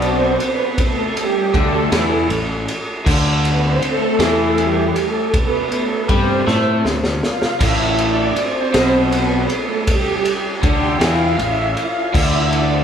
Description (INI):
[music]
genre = psychedelic rock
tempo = 53 BPM (dotted quarters)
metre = 6/8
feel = straight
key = A minor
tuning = A4 = 441 Hz
[part]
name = string machine, cellos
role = sustained chords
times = 0.0-12.8 s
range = G4 to G5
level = -19 LUFS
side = right 2 dB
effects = ensemble chorus
[part]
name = crunchy overdriven guitar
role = riff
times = 0.0-12.8 s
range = A2 to A3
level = -20 LUFS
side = left 1 dB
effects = none
[part]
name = fuzz fingered electric bass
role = bass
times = 0.0-12.8 s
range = A1 to A2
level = -22 LUFS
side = left 1 dB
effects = overdrive
[part]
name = raw garage drum kit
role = drums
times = 0.0-12.7 s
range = crash cymbal, kick drum, ride cymbal, snare drum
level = -20 LUFS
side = equal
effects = none
[sound]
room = wet large studio reverb, RT60 1.3 s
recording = band playing live in one room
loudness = -15 LUFS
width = side -8 dB against mid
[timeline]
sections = 0.0-12.8 A section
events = string machine solo 0.0-12.8; drum fill 6.5-7.6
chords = 0.0 Asus2; 3.1 Dsus2; 7.6 Asus2; 12.1 Dsus2